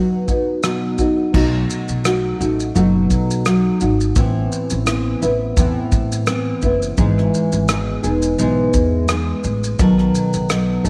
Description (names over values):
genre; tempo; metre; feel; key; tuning
acoustic pop; 85 BPM; 4/4; swing 55% on 16ths; unclear; A4 = 439 Hz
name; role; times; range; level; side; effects
nylon-string guitar; accompaniment; 0.0-10.9 s; G#2 to A4; -20 LUFS; equal; double-tracked
unplugged drum kit; drums; 0.3-10.9 s; crash cymbal, kick drum, rim click, shaker; -24 LUFS; equal; none
upright bass; bass; 1.3-10.9 s; E1 to A2; -24 LUFS; equal; none
room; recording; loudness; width
moderate echo chamber reverb, RT60 2.0 s; none; -18 LUFS; mono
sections
0.0-1.3 A section; 1.3-10.9 B section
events
none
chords
0.0 B; 1.3 B7; 4.2 Amadd9; 7.0 Emaj7; 9.8 B7